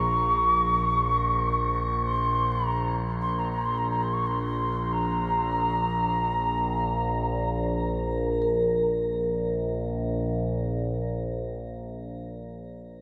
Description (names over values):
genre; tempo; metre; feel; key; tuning
world meditative, free-time meditation music; free time; none; none; Bb hirajoshi; A4 = 440 Hz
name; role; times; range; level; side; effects
mellow alto ocarina; melody; 0.0-7.5 s; Bb5 to Db6; -28 LUFS; equal; shimmer reverb, delay
overtone-sweeping drone; drone; 0.0-11.4 s; Bb1; -30 LUFS; equal; chorus, built-in reverb
vibraphone with medium mallets; texture; 0.0-1.7, 8.4-11.4 s; Bb4; -33 LUFS; equal; shimmer reverb
room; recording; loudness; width
wet cathedral reverb, RT60 6.7 s; in a vast, echoing space; -26 LUFS; mono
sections
0.0-8.4 A section; 8.4-12.5 B section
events
none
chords
none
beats
free time